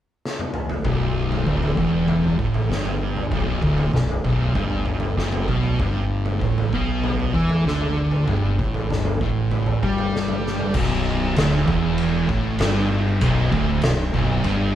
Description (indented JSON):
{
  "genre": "stoner and doom metal",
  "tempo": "97 BPM",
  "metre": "4/4",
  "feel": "straight",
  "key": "B minor",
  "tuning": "A4 = 440 Hz",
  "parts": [
    { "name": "oversized low-tuned drum kit", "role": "drums", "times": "0.3-14.6 s", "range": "crash cymbal, kick drum, ride cymbal, snare drum, toms", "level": "-25 LUFS", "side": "equal", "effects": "none" },
    { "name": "thick fuzz guitar", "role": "riff", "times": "0.8-14.8 s", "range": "B1 to G3", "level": "-26 LUFS", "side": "left 5 dB", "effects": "distortion" },
    { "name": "thick fuzz guitar", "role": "riff", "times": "0.8-14.8 s", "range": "B1 to G3", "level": "-23 LUFS", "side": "right 4 dB", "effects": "distortion" },
    { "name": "fuzz fingered electric bass", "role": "bass", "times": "0.8-14.8 s", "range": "B0 to G2", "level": "-26 LUFS", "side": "left 1 dB", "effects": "overdrive" },
    { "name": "thick fuzz guitar", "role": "riff", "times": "10.7-14.8 s", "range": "B1 to A2", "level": "-26 LUFS", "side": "equal", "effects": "distortion" }
  ],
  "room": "moderate studio reverb, RT60 0.7 s",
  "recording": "band playing live in one room",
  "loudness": "-19 LUFS",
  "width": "side -11 dB against mid",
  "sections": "0.8-10.8 A section; 10.8-14.8 B section",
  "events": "drum fill 0.2-0.8, 10.4-10.8",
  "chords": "0.0 N.C.; 0.8 Bm; 5.8 G5; 10.8 Bm"
}